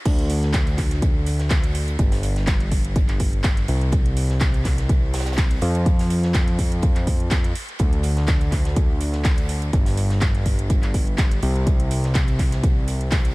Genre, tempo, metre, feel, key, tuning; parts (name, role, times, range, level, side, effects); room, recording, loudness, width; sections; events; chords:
piano house; 124 BPM; 4/4; swing 54% on 16ths; D minor; A4 = 440 Hz
fat analog bass; bass; 0.1-13.3 s; G1 to F2; -22 LUFS; equal; sidechain pumping
electronic kick drum; drums; 0.1-13.2 s; -20 LUFS; equal
house drum kit; drums; 0.1-13.3 s; crash cymbal, handclaps, hi-hat; -30 LUFS; right 1 dB
tight funk drum kit; drums; 0.1-13.2 s; hi-hat, snare drum; -38 LUFS; right 2 dB
small room ambience; -18 LUFS; side -23 dB against mid
0.1-13.3 A section
drop 0.1-13.3